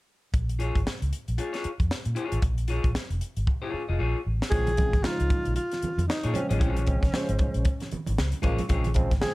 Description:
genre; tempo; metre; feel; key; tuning
funk; 115 BPM; 4/4; swing 60% on 16ths; Bb minor; A4 = 441 Hz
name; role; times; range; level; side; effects
vintage muted fingered electric bass; bass; 0.3-9.3 s; F1 to Bb2; -27 LUFS; equal; none
crisp fusion drum kit; drums; 0.3-9.3 s; hi-hat, kick drum, snare drum; -27 LUFS; equal; none
electric guitar at the edge of break-up; accompaniment; 0.6-8.9 s; F4 to Eb5; -32 LUFS; left 4 dB; none
breathy alto saxophone; melody; 4.5-9.3 s; Db4 to Ab4; -30 LUFS; equal; none
barky tine electric piano; stabs; 4.5-9.3 s; Db3 to C5; -33 LUFS; right 2 dB; none
congas; percussion; 4.5-9.2 s; none; -35 LUFS; right 3 dB; none
room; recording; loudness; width
light reverb; none; -24 LUFS; side -20 dB against mid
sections
0.3-4.5 A section; 4.5-9.3 B section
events
drum fill 3.5-4.5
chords
0.3 Bbm7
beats
| 0.34 0.86 1.38 1.91 | 2.43 2.95 3.48 4.00 | 4.52 5.05 5.57 6.09 | 6.61 7.14 7.66 8.18 | 8.70 9.22

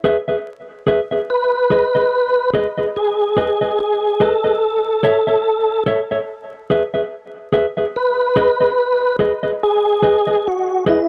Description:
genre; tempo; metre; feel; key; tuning
reggae; 72 BPM; 4/4; swing 58% on 16ths; G# phrygian; A4 = 440 Hz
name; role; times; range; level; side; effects
mellow electric guitar; accompaniment; 0.0-11.0 s; G#4 to E5; -21 LUFS; equal; dub echo
mellow tonewheel organ; melody; 1.3-11.1 s; E4 to B4; -18 LUFS; equal; chorus vibrato, fast rotary speaker, dub echo
room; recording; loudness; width
light reverb; dry, close 1970s-style studio recording, vinyl crackle; -17 LUFS; mono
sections
0.0-11.1 A section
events
none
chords
0.0 E; 1.3 G#m; 4.6 A; 6.3 E; 7.9 G#m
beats
0.45 | 1.28 2.12 2.95 3.78 | 4.61 5.45 6.28 7.11 | 7.94 8.78 9.61 10.44

